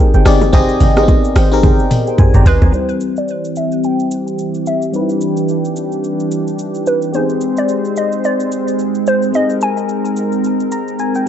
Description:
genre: amapiano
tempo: 109 BPM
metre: 4/4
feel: swing 58% on 16ths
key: unclear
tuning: A4 = 437 Hz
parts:
  - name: FM electric piano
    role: accompaniment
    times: 0.0-11.3 s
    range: G3 to C6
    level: -18 LUFS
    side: left 2 dB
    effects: chorus, low-pass filter
  - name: deep mellow chord stab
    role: stabs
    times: 0.1-2.4 s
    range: Ab4 to G5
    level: -23 LUFS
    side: right 4 dB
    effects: chorus, ping-pong delay
  - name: hollow log drum bass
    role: bass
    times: 0.1-2.7 s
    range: G1 to Ab1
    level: -13 LUFS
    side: equal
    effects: none
  - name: afro-pop drum kit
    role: drums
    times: 0.1-11.3 s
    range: hi-hat, kick drum, rim click, shaker, toms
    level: -14 LUFS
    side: equal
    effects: none
  - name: bongos and congas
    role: percussion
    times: 0.4-2.7 s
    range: none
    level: -21 LUFS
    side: right 2 dB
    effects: none
  - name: hollow square pluck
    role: melody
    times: 2.5-10.7 s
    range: B4 to Ab5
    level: -19 LUFS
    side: equal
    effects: chorus, low-pass filter, ping-pong delay
  - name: warm analog pad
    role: sustained chords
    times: 2.7-11.3 s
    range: E3 to C5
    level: -18 LUFS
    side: equal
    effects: chorus, low-pass filter
room: light reverb, digital ambience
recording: dark, warm production, nothing above 8.0 kHz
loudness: -12 LUFS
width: side -10 dB against mid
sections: 0.0-2.7 A section; 2.7-11.3 B section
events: drop 0.0-2.7; drum fill 1.6-2.7; filter sweep 2.7-11.3; FM electric piano fill 10.4-11.3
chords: 0.0 Abmaj7; 2.7 Cmaj7; 7.1 Abmaj7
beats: | 0.53 1.08 1.63 2.18 | 2.73 3.28 3.83 4.38 | 4.94 5.49 6.04 6.59 | 7.14 7.69 8.24 8.79 | 9.34 9.89 10.44 10.99

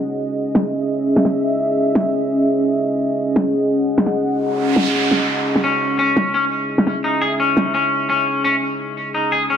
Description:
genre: half-time drum and bass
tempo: 171 BPM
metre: 4/4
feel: half-time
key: C# minor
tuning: A4 = 439 Hz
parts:
  - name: dark analog pad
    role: sustained chords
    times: 0.0-9.6 s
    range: C#4 to G#5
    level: -19 LUFS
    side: equal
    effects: chorus
  - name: electronic snare drum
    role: drums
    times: 0.5-7.6 s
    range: none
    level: -18 LUFS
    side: equal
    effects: low-pass filter on snare, small room reverb
  - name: noise sweep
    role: sound effects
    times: 4.5-5.6 s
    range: none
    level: -23 LUFS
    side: right 3 dB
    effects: none
  - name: clean electric guitar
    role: arpeggios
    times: 5.6-9.6 s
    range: C#4 to G#4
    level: -18 LUFS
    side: left 2 dB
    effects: tape echo
room: wet echo chamber reverb, RT60 1.4 s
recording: none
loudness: -16 LUFS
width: side -8 dB against mid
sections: 0.0-9.6 A section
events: noise sweep 4.5-5.6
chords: 0.0 C#madd9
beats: | 0.03 0.38 0.73 1.08 | 1.43 1.78 2.13 2.48 | 2.83 3.18 3.54 3.89 | 4.24 4.59 4.94 5.29 | 5.64 5.99 6.34 6.69 | 7.04 7.39 7.75 8.10 | 8.45 8.80 9.15 9.50

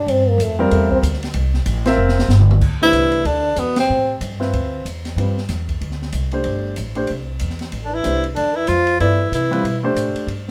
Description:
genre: modal jazz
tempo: 188 BPM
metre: 4/4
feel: swing 61% on 8ths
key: D dorian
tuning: A4 = 440 Hz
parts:
  - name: trombone with cup mute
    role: second line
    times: 0.0-4.2, 7.8-9.8 s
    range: B2 to D4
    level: -24 LUFS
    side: equal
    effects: none
  - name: upright bass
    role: bass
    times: 0.0-10.5 s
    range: F1 to C3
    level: -22 LUFS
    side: equal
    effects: none
  - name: open jazz drum kit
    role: drums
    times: 0.1-10.5 s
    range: crash cymbal, hi-hat, kick drum, ride cymbal, snare drum, toms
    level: -30 LUFS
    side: equal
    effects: none
  - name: warm grand piano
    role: accompaniment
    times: 0.6-10.3 s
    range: G3 to E5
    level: -23 LUFS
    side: equal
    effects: none
  - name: warm tenor saxophone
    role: melody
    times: 2.8-4.2, 7.8-9.8 s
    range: B3 to F4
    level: -20 LUFS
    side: equal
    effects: none
room: moderate large studio reverb, RT60 0.9 s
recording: none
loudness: -18 LUFS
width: mono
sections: 0.0-2.6 A section; 2.6-10.5 B section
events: trombone solo 0.0-2.6; drum fill 2.0-2.6; band accent 3.7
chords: 0.0 G7sus4; 2.6 D9sus4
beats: | 0.08 0.40 0.72 1.03 | 1.35 1.67 1.99 2.30 | 2.62 2.94 3.26 3.58 | 3.90 4.22 4.54 4.85 | 5.17 5.49 5.81 6.13 | 6.45 6.77 7.09 7.41 | 7.73 8.04 8.36 8.68 | 9.00 9.32 9.64 9.96 | 10.28

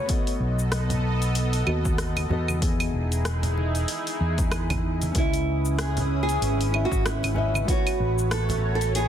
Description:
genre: sunset chillout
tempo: 95 BPM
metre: 4/4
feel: swing 57% on 16ths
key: E major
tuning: A4 = 440 Hz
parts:
  - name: nylon-string guitar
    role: accompaniment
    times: 0.0-9.1 s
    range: E3 to E5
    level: -32 LUFS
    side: moving between left 5 dB and right 5 dB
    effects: auto-pan, tape echo
  - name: lush unison pad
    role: sustained chords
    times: 0.0-9.1 s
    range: A3 to D#6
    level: -31 LUFS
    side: right 1 dB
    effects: chorus, phaser
  - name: deep house drum kit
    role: drums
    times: 0.1-9.1 s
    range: claves, hi-hat, rim click, shaker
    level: -32 LUFS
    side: equal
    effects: soft clipping on snare
  - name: electronic kick drum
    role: drums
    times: 0.1-7.8 s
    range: none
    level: -26 LUFS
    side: equal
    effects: none
  - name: mellow fretless electric bass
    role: bass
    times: 0.4-9.1 s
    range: E1 to E2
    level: -25 LUFS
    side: equal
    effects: none
  - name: congas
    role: percussion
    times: 0.9-8.6 s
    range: none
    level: -33 LUFS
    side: right 2 dB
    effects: none
  - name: nylon-string guitar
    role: melody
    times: 5.2-9.1 s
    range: E4 to A4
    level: -28 LUFS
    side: right 3 dB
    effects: tape echo
room: light reverb, small room ambience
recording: dense, heavily limited modern master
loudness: -22 LUFS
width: side -9 dB against mid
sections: 0.0-9.1 A section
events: none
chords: 0.1 B7; 2.6 Emaj7; 5.2 C#m9; 7.7 A69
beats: | 0.10 0.73 1.36 1.99 | 2.62 3.25 3.89 4.52 | 5.15 5.78 6.41 7.04 | 7.68 8.31 8.94

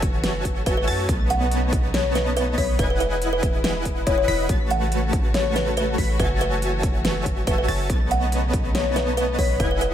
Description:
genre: future bass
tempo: 141 BPM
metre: 4/4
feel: half-time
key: unclear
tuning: A4 = 441 Hz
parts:
  - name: kalimba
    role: melody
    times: 0.0-9.9 s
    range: B4 to F#5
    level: -26 LUFS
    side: left 1 dB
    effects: sidechain pumping, digital delay
  - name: rich studio string section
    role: sustained chords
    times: 0.0-9.9 s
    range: C#3 to F#4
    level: -34 LUFS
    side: left 2 dB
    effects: sidechain pumping
  - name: wide unison pluck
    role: arpeggios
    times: 0.0-9.9 s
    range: G#6 to B6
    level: -34 LUFS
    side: equal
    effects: sidechain pumping, digital delay
  - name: dense compressed supersaw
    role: riff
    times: 0.0-9.9 s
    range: A3 to B5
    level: -27 LUFS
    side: right 1 dB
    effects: sidechain pumping
  - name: warm 808-style bass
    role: bass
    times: 0.0-9.9 s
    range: E1 to F#2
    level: -26 LUFS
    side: equal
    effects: sidechain pumping
  - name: big-room dance drum kit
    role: drums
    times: 0.0-9.9 s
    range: hi-hat, snare drum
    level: -29 LUFS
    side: equal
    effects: studio ambience
  - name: electronic kick drum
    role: drums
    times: 0.0-9.7 s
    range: none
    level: -24 LUFS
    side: equal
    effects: studio ambience
  - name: noise sweep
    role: sound effects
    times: 9.9 s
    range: none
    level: barely audible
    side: none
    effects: none
room: digital ambience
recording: none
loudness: -19 LUFS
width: side -10 dB against mid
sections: 0.0-9.9 A section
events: none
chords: 0.0 F#m7; 1.1 B9; 2.8 Emaj7; 4.5 A6; 6.2 F#m7; 7.9 B9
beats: 0.24 0.66 | 1.09 1.51 1.94 2.37 | 2.79 3.22 3.64 4.07 | 4.49 4.92 5.34 5.77 | 6.20 6.62 7.05 7.47 | 7.90 8.32 8.75 9.17 | 9.60

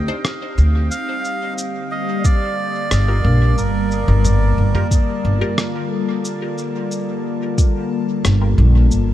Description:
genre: ambient dub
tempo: 90 BPM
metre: 4/4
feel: straight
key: G minor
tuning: A4 = 444 Hz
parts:
  - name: warbly tape-like pad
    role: sustained chords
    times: 0.0-9.1 s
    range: D3 to A5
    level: -23 LUFS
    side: left 2 dB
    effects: chorus, built-in reverb, phaser
  - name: upright bass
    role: bass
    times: 0.0-9.1 s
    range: G1 to D2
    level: -14 LUFS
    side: equal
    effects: none
  - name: filtered dub chord stab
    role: stabs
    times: 0.1-8.6 s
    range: D4 to C5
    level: -33 LUFS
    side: left 1 dB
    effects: phaser, dub echo
  - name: lo-fi sampler-style drum kit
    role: drums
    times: 0.2-9.0 s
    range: rim click, shaker, toms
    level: -23 LUFS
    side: equal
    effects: none
  - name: melodica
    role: melody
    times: 0.9-4.9 s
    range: Bb4 to F5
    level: -27 LUFS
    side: right 3 dB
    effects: dub echo
  - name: vibraphone with soft mallets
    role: arpeggios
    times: 1.2-9.1 s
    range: F4 to F5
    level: -28 LUFS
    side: left 1 dB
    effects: dub echo
  - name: electronic kick drum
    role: drums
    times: 2.2-7.7 s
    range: none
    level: -14 LUFS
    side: equal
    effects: none
room: little or no reverb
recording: none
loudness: -15 LUFS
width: side -13 dB against mid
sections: 0.9-9.1 A section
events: none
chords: 0.0 Cmadd9; 0.9 Gm7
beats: 0.25 | 0.91 1.58 2.25 2.91 | 3.58 4.25 4.91 5.58 | 6.25 6.91 7.58 8.25 | 8.91

